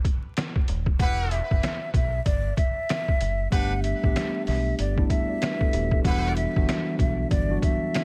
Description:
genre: hip hop, boom-bap hip-hop.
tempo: 95 BPM.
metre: 4/4.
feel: swing 62% on 16ths.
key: E minor.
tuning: A4 = 440 Hz.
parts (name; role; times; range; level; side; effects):
trip hop sampler-style drum kit; drums; 0.0-8.0 s; hi-hat, kick drum, snare drum; -27 LUFS; equal; none.
deep dub fingered electric bass; bass; 0.7-7.6 s; D#1 to B1; -30 LUFS; equal; none.
breathy hollow jazz flute; melody; 1.0-8.0 s; D5 to F#5; -32 LUFS; equal; tape echo.
brilliant trumpet section; stabs; 1.0-6.3 s; D4 to B4; -39 LUFS; equal; tape echo.
mellow tine electric piano; accompaniment; 3.5-8.0 s; E3 to D5; -30 LUFS; equal; cassette tape.
room: digital ambience.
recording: vinyl crackle.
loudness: -25 LUFS.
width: mono.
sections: 0.0-8.0 A section.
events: break 0.0-3.5.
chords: 0.0 N.C.; 1.0 Em; 3.5 Gadd9; 6.0 Em7.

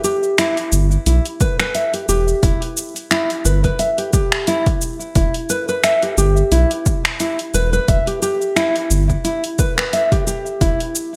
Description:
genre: organic downtempo.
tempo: 88 BPM.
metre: 4/4.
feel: swing 56% on 16ths.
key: E minor.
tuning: A4 = 441 Hz.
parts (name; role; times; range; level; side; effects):
nylon-string guitar; arpeggios; 0.0-10.8 s; E4 to E5; -21 LUFS; equal; delay.
deep house drum kit; drums; 0.0-11.1 s; finger snaps, hi-hat, shaker; -24 LUFS; equal; overdrive, studio reverb, gated reverb.
round analog bass; bass; 0.7-10.7 s; E1 to B1; -18 LUFS; equal; tube saturation, sidechain pumping.
electronic kick drum; drums; 1.4-10.8 s; none; -20 LUFS; equal; overdrive, studio reverb.
room: moderate plate reverb, RT60 1.7 s.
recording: bright 1980s-style digital production.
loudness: -18 LUFS.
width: mono.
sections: 0.0-11.2 A section.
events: none.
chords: 0.0 Em.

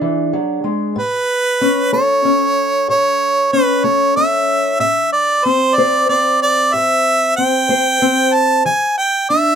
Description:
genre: acoustic country blues, solo or duo.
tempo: 62 BPM (dotted quarters).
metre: 12/8.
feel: straight.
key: unclear.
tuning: A4 = 440 Hz.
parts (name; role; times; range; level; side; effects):
fingerpicked steel-string acoustic guitar; accompaniment; 0.0-9.6 s; A2 to C5; -18 LUFS; left 3 dB; none.
bright harmonica; melody; 1.0-9.6 s; B4 to A5; -14 LUFS; right 2 dB; none.
room: light reverb.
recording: close, detailed microphones.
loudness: -13 LUFS.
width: side -8 dB against mid.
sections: 0.0-9.6 A section.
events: none.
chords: 0.0 E7; 1.0 A; 4.8 Am7; 8.7 E7.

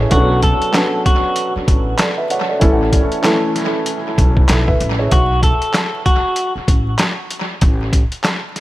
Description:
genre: hip hop, boom-bap hip-hop.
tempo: 96 BPM.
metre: 4/4.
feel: swing 60% on 16ths.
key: unclear.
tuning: A4 = 440 Hz.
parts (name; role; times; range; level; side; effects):
dark upright piano; accompaniment; 0.0-5.1 s; E3 to F#5; -18 LUFS; right 1 dB; cassette tape, high-pass filter, low-pass filter, tape echo.
upright bass; bass; 0.0-8.0 s; A1 to B1; -18 LUFS; equal; none.
clean electric guitar; melody; 0.1-6.5 s; F#4 to A4; -19 LUFS; equal; high-pass filter, low-pass filter, tape echo.
trip hop sampler-style drum kit; drums; 0.1-8.6 s; handclaps, hi-hat, kick drum, snare drum; -16 LUFS; equal; tape echo.
room: little or no reverb.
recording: echo-heavy mix, vinyl crackle.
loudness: -13 LUFS.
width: side -16 dB against mid.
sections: 0.0-8.6 A section.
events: none.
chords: 0.1 Bm7; 2.6 A; 5.1 Asus2.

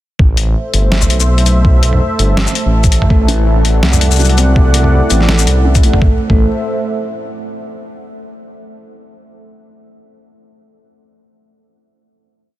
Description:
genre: half-time drum and bass.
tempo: 165 BPM.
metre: 4/4.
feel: swing 55% on 16ths, half-time.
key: A dorian.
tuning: A4 = 441 Hz.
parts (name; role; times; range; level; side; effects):
dark analog pad; sustained chords; 0.4-7.4 s; A3 to F#5; -20 LUFS; right 2 dB; chorus, vintage 12-bit sampler grit, sidechain pumping.
dark detuned saw bass; bass; 0.2-6.5 s; G1 to C2; -12 LUFS; equal; none.
electronic kick drum; drums; 0.2-6.4 s; none; -11 LUFS; equal; none.
boom bap sampler-style drum kit; drums; 0.4-6.0 s; hi-hat, shaker, snare drum, toms; -17 LUFS; left 1 dB; none.
felt-muted upright piano; arpeggios; 3.1-6.5 s; A2 to A4; -19 LUFS; left 1 dB; ping-pong delay.
room: digital ambience.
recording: dense, heavily limited modern master.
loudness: -9 LUFS.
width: side -15 dB against mid.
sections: 0.2-6.0 drop; 6.0-7.5 final chord.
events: drop 0.2-6.0.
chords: 0.2 Am; 3.1 D/A; 6.0 Am.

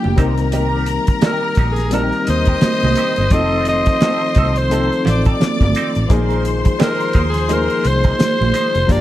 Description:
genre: lush 1970s-style soul.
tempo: 86 BPM.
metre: 4/4.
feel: swing 58% on 16ths.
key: unclear.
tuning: A4 = 442 Hz.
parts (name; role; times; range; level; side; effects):
rich studio string section; second line; 0.0-9.0 s; G4 to Eb6; -24 LUFS; left 3 dB; none.
overdriven reed electric piano; accompaniment; 0.0-9.0 s; F3 to Bb4; -22 LUFS; left 4 dB; fast tremolo.
mellow tonewheel organ; sustained chords; 0.0-9.0 s; D3 to G4; -28 LUFS; right 3 dB; chorus vibrato, stopped rotary speaker.
congas; percussion; 0.0-9.0 s; none; -24 LUFS; right 6 dB; none.
vintage muted fingered electric bass; bass; 0.1-9.0 s; F1 to Eb2; -19 LUFS; equal; none.
clean electric guitar; riff; 0.2-9.0 s; C4 to C5; -28 LUFS; right 8 dB; wah.
cloth-damped thuddy drum kit; drums; 0.2-9.0 s; hi-hat, kick drum, snare drum; -17 LUFS; equal; none.
raspy alto saxophone; melody; 1.3-9.0 s; Ab4 to Eb5; -19 LUFS; equal; none.
room: light reverb, studio ambience.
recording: dark, warm production.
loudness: -14 LUFS.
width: side -14 dB against mid.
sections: 0.0-9.0 A section.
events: none.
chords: 0.2 Cm7; 3.3 F7; 6.1 Bb7sus4.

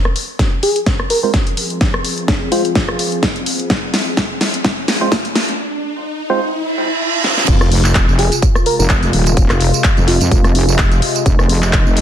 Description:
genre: bass house.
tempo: 127 BPM.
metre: 4/4.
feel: swing 55% on 16ths.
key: F minor.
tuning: A4 = 440 Hz.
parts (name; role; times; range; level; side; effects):
sweeping resonant pad; sustained chords; 1.5-12.0 s; C3 to Ab4; -23 LUFS; left 1 dB; chorus, phaser, sidechain pumping.
riser, reverse cymbal and sub drop; sound effects; 2.2-9.4 s; none; -22 LUFS; right 1 dB; none.
big-room dance drum kit; drums; 0.1-12.0 s; crash cymbal, handclaps, hi-hat, rim click, snare drum, tambourine; -18 LUFS; equal; small room ambience, soft clipping on snare.
electronic kick drum; drums; 0.4-11.8 s; none; -15 LUFS; equal; small room ambience.
bell-like FM electric piano; melody; 0.6-3.2, 8.2-10.7 s; F4 to Bb4; -20 LUFS; equal; chorus, dub echo.
percussive organ stab; stabs; 1.2-6.4 s; Ab3 to C5; -21 LUFS; right 4 dB; chorus, sidechain pumping, dub echo.
wobble bass; bass; 7.5-12.0 s; Eb1 to F2; -14 LUFS; equal; chorus, overdrive, sidechain pumping.
room: light reverb, digital ambience.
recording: dense, heavily limited modern master, high-pass filter.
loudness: -12 LUFS.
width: side -10 dB against mid.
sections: 0.0-7.5 A section; 7.5-12.0 B section.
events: build-up 0.0-7.5; drum fill 0.0-5.6, 7.2; filter sweep on synth stab 0.0-7.5; filter sweep on analog synth pad 0.0-7.5; filter sweep 0.0-7.5; riser 2.2-7.5; reverse cymbal 6.5-7.5; drop 7.5-12.0; impact 7.5-9.4.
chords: 0.0 Fm.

